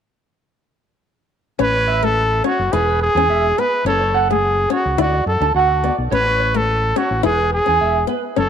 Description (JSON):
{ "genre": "highlife", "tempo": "106 BPM", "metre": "4/4", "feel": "straight", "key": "A major", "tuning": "A4 = 441 Hz", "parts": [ { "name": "breathy trumpet", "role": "melody", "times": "1.6-8.5 s", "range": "F#4 to B4", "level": "-17 LUFS", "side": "equal", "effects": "none" }, { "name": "flamenco guitar", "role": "accompaniment", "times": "1.6-8.5 s", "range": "A3 to E4", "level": "-23 LUFS", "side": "left 13 dB", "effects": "none" }, { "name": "electric guitar through a small old amp", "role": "arpeggios", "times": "1.6-8.5 s", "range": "B4 to A5", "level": "-22 LUFS", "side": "right 10 dB", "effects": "spring reverb, slapback echo" }, { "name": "fingered electric bass", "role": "bass", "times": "1.6-8.5 s", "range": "E1 to F#2", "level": "-22 LUFS", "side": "left 1 dB", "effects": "none" } ], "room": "moderate plate reverb, RT60 2.8 s", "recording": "1960s-style stereo with parts hard left and right", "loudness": "-15 LUFS", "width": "side -8 dB against mid", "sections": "1.6-8.5 A section", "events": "none", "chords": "1.6 A; 2.7 E; 3.8 F#m; 5.0 D; 6.1 A; 7.2 E" }